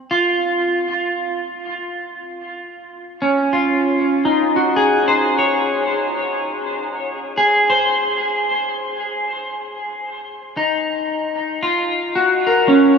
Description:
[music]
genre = ambient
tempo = 57 BPM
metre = 3/4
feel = straight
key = Eb dorian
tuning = A4 = 440 Hz
[part]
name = clean electric guitar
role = solo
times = 0.1-13.0 s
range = Db4 to Db5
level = -16 LUFS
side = equal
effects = lush chorus, diffuse ambient delay
[sound]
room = wet huge ambient reverb, RT60 8.4 s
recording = dreamy mix soaked in reverb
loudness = -16 LUFS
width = side -6 dB against mid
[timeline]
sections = 0.0-9.5 A section; 9.5-13.0 B section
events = none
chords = 0.0 Ebm9; 9.5 Gb6

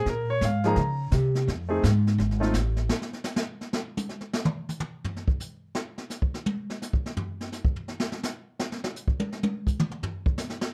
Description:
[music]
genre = jazz piano trio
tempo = 169 BPM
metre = 4/4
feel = swing 63% on 8ths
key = unclear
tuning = A4 = 440 Hz
[part]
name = clear concert grand piano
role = melody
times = 0.0-2.5 s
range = F3 to Bb5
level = -29 LUFS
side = equal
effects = none
[part]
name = upright bass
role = bass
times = 0.0-2.9 s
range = G#1 to Db3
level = -26 LUFS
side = equal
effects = none
[part]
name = jazz brush drum kit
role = drums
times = 0.1-10.7 s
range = brushed snare drum, hi-hat, kick drum, snare drum, toms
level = -31 LUFS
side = equal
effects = none
[sound]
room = light reverb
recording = tape saturation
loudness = -28 LUFS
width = mono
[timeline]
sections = 0.0-2.9 A section; 2.9-10.7 A section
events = grand piano solo 0.0-2.9; drum solo 2.9-10.7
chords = 0.1 Bbm9; 1.5 F(#9); 2.9 N.C.

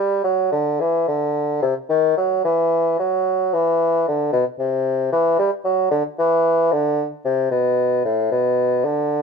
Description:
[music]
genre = classical, baroque-style fantasia for unaccompanied bassoon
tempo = 56 BPM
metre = 3/4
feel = rubato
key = E minor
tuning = A4 = 443 Hz
[part]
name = mellow bassoon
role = solo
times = 0.0-9.2 s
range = A2 to G3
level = -17 LUFS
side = equal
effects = none
[sound]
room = light reverb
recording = none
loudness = -17 LUFS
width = side -5 dB against mid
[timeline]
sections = 0.0-9.2 A section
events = none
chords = none

